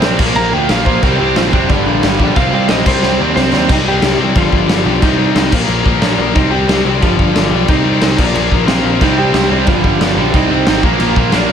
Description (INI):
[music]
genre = punk rock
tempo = 180 BPM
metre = 4/4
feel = straight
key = C minor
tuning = A4 = 440 Hz
[part]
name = crunchy overdriven guitar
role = riff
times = 0.0-3.7, 9.0-11.5 s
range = G2 to C4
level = -18 LUFS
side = right 13 dB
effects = none
[part]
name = distorted electric guitar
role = riff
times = 0.0-11.5 s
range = G2 to C4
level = -18 LUFS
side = left 14 dB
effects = distortion
[part]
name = tight distorted guitar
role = riff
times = 0.0-11.5 s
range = G2 to C4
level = -19 LUFS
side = right 1 dB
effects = distortion
[part]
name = overdriven picked electric bass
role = bass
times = 0.0-11.5 s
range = F1 to Eb2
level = -18 LUFS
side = equal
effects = none
[part]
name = raw garage drum kit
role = drums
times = 0.0-11.4 s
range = crash cymbal, kick drum, snare drum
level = -15 LUFS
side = equal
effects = none
[part]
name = lightly driven lead guitar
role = melody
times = 0.4-11.5 s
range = F3 to Bb5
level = -18 LUFS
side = right 1 dB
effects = none
[sound]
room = light reverb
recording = none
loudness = -10 LUFS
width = side -8 dB against mid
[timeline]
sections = 0.0-3.7 A section; 3.7-11.5 B section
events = lead electric guitar solo 0.0-3.7; drum fill 3.0-3.7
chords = 0.2 Bb; 1.0 C5; 1.7 Gm; 2.4 C5; 2.9 Cm; 3.7 C5; 4.4 G5; 5.0 Cm; 5.5 Bb; 6.4 Cm; 7.0 G5; 7.7 Cm; 8.2 Bb; 9.0 Cm; 9.7 Gm; 10.3 Cm; 10.8 Bb